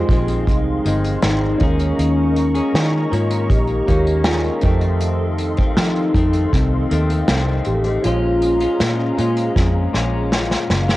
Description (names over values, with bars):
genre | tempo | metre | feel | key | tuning
indie pop, bedroom pop | 79 BPM | 4/4 | straight | F minor | A4 = 439 Hz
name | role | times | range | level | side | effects
hollow clarinet-like synth lead | melody | 0.0-10.7 s | C4 to G4 | -22 LUFS | left 1 dB | analog chorus, cassette tape, analog delay
direct-recorded clean electric guitar | accompaniment | 0.0-11.0 s | F2 to Ab4 | -24 LUFS | left 4 dB | lush chorus, warbly pitch drift, cassette tape
soft electric-piano-like synth keys | accompaniment | 0.0-11.0 s | Ab3 to C5 | -29 LUFS | right 6 dB | chorus, cassette tape
hollow soft pad | sustained chords | 0.0-11.0 s | Ab3 to Db6 | -28 LUFS | equal | ensemble chorus, cassette tape
vintage muted fingered electric bass | bass | 0.1-11.0 s | Gb1 to F3 | -20 LUFS | equal | none
unplugged drum kit | drums | 0.1-11.0 s | hi-hat, kick drum, snare drum | -20 LUFS | equal | cassette tape
room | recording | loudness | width
light reverb, small room ambience | home recording on cassette | -15 LUFS | side -17 dB against mid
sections
0.0-11.0 A section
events
drum fill 9.6-11.0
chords
0.0 Fm7; 1.6 Eb7sus4; 4.6 F7; 8.0 Bbm7